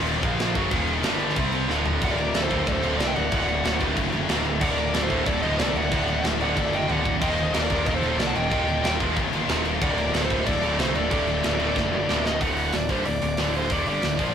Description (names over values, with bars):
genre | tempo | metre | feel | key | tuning
heavy metal | 185 BPM | 4/4 | straight | D phrygian dominant | A4 = 440 Hz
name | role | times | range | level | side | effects
heavy high-gain guitar | riff | 0.0-14.3 s | D2 to C4 | -29 LUFS | right 7 dB | distortion
high-gain distorted guitar | riff | 0.0-12.4 s | D2 to C4 | -36 LUFS | equal | none
scooped high-gain guitar | riff | 0.0-14.3 s | D2 to C4 | -28 LUFS | left 5 dB | distortion
fuzz picked electric bass | bass | 0.0-14.3 s | D1 to C2 | -29 LUFS | equal | overdrive
tight metal drum kit | drums | 0.1-14.3 s | crash cymbal, hi-hat, kick drum, snare drum, toms | -27 LUFS | equal | none
bluesy overdriven lead guitar | melody | 2.0-14.3 s | C5 to A5 | -28 LUFS | left 1 dB | distortion
smooth overdriven lead guitar | second line | 2.1-12.0 s | A4 to F#5 | -33 LUFS | right 2 dB | none
room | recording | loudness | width
moderate studio reverb, RT60 0.6 s | rough rehearsal-room recording | -21 LUFS | side -8 dB against mid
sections
0.0-2.0 A section; 2.0-12.4 B section; 12.4-14.3 C section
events
drum fill 1.7-2.0, 6.9-7.2, 11.8-12.4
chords
0.2 Bb5; 0.6 F#5; 0.7 Eb5; 1.0 G5; 1.4 C5; 1.7 D5; 2.0 D; 7.2 Eb; 9.8 D5